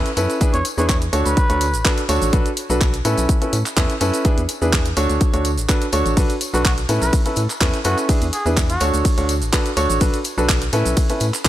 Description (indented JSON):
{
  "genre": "piano house",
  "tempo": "125 BPM",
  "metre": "4/4",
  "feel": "swing 53% on 16ths",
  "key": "A major",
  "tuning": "A4 = 436 Hz",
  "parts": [
    { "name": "warm upright piano", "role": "riff", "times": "0.0-11.5 s", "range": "C#4 to C#5", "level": "-21 LUFS", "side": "right 1 dB", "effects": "sidechain pumping, tape echo" },
    { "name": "organ-like FM bass", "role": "bass", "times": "0.0-11.5 s", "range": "A1 to A2", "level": "-21 LUFS", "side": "equal", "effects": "tube saturation, sidechain pumping" },
    { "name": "house drum kit", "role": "drums", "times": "0.1-11.5 s", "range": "handclaps, hi-hat, ride cymbal, shaker", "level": "-24 LUFS", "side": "right 1 dB", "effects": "none" },
    { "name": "tambourine", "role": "percussion", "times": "0.2-11.5 s", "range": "none", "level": "-33 LUFS", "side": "left 5 dB", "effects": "none" },
    { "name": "electronic kick drum", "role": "drums", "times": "0.4-11.5 s", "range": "none", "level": "-18 LUFS", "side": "equal", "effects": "none" },
    { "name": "trumpet with cup mute", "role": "melody", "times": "0.5-1.9, 6.5-8.9 s", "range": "F#4 to C#5", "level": "-27 LUFS", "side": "equal", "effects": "tape echo" }
  ],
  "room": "little or no reverb",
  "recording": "dry, gritty hardware recording",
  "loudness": "-16 LUFS",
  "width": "side -13 dB against mid",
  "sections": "0.0-11.5 A section",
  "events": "none",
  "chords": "0.4 E7; 1.1 Dmaj7; 2.3 Bm7; 3.3 Aadd9; 4.2 E7; 5.0 Dmaj7; 6.2 Bm7; 7.1 Aadd9; 8.1 E7; 8.8 Dmaj7; 10.0 Bm7; 11.0 Aadd9"
}